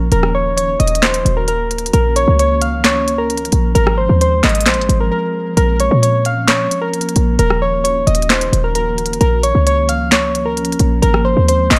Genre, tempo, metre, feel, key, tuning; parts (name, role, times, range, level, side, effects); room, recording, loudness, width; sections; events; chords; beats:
hip hop, trap; 132 BPM; 4/4; half-time; Bb minor; A4 = 440 Hz
soft electric-piano-like synth keys; melody; 0.0-11.8 s; Bb4 to F5; -19 LUFS; equal; chorus, tape echo
glassy FM pad; sustained chords; 0.0-11.8 s; Eb3 to Gb4; -25 LUFS; equal; ensemble chorus, built-in reverb
short 808-style bass; bass; 0.0-11.8 s; Eb1 to Bb2; -18 LUFS; equal
trap drum kit; drums; 0.1-11.8 s; handclaps, hi-hat, rim click, snare drum; -18 LUFS; equal
light reverb, digital ambience; -15 LUFS; mono
0.0-11.8 A section
break 5.1-5.6
0.1 Ebm; 1.9 Bbm; 3.8 Ab6; 5.6 Bbm; 7.4 Ebm; 9.2 Bbm; 11.0 Ab6
| 0.12 0.57 1.03 1.48 | 1.94 2.39 2.84 3.30 | 3.75 4.21 4.66 5.12 | 5.57 6.03 6.48 6.93 | 7.39 7.84 8.30 8.75 | 9.21 9.66 10.12 10.57 | 11.03 11.48